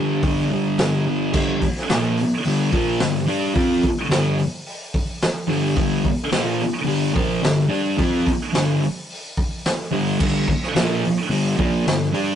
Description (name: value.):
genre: garage rock duo or trio.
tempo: 108 BPM.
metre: 4/4.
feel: straight.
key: G minor.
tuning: A4 = 440 Hz.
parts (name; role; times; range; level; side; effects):
thick fuzz guitar; riff; 0.0-12.4 s; G2 to G4; -19 LUFS; equal; distortion.
raw garage drum kit; drums; 0.2-12.3 s; crash cymbal, hi-hat, kick drum, snare drum; -23 LUFS; equal; none.
room: moderate studio reverb, RT60 0.6 s.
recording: rough rehearsal-room recording, tube saturation, nothing above 10.8 kHz.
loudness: -18 LUFS.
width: side -9 dB against mid.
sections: 0.0-1.3 A section; 1.3-12.4 B section.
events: none.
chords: 0.0 G5; 1.3 Gm.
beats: 0.23 0.78 | 1.34 1.89 2.45 3.00 | 3.56 4.11 4.67 5.22 | 5.77 6.33 6.88 7.43 | 7.99 8.54 9.10 9.65 | 10.21 10.76 11.31 11.87.